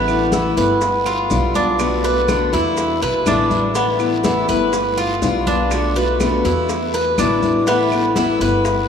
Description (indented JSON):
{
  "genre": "latin, Cuban son and guajira",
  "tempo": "123 BPM",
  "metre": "4/4",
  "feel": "straight",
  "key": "unclear",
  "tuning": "A4 = 440 Hz",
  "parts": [
    { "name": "picked steel-string acoustic guitar", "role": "accompaniment", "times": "0.0-8.7 s", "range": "B2 to F#4", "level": "-20 LUFS", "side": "left 4 dB", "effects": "none" },
    { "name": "Cuban tres", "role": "arpeggios", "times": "0.0-8.9 s", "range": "B3 to B4", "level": "-18 LUFS", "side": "right 1 dB", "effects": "none" },
    { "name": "upright bass", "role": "bass", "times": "0.0-8.9 s", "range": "G1 to E2", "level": "-24 LUFS", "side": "equal", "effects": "none" },
    { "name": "bongos", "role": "percussion", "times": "0.1-8.9 s", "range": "none", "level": "-29 LUFS", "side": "left 6 dB", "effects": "none" },
    { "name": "claves", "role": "percussion", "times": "0.1-8.2 s", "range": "none", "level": "-38 LUFS", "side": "right 5 dB", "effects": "none" },
    { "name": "congas", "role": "percussion", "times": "0.1-8.9 s", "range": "none", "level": "-28 LUFS", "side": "left 2 dB", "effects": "none" },
    { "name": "maracas", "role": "percussion", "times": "0.1-8.9 s", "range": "none", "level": "-36 LUFS", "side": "right 8 dB", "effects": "none" },
    { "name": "guiro", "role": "percussion", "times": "0.3-8.9 s", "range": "none", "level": "-36 LUFS", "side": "left 5 dB", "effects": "none" }
  ],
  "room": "wet cathedral reverb, RT60 6.2 s",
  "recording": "in a vast, echoing space, studio reverb",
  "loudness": "-15 LUFS",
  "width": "side -7 dB against mid",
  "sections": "0.0-8.9 A section",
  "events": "none",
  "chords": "0.0 Asus2; 0.8 G7; 1.8 Bm7; 2.8 E7; 3.8 Asus2; 4.7 G7; 5.7 Bm7; 6.7 E7; 7.7 Asus2",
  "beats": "0.33 0.82 1.31 | 1.80 2.29 2.77 3.26 | 3.75 4.24 4.73 5.22 | 5.71 6.20 6.69 7.18 | 7.67 8.16 8.65"
}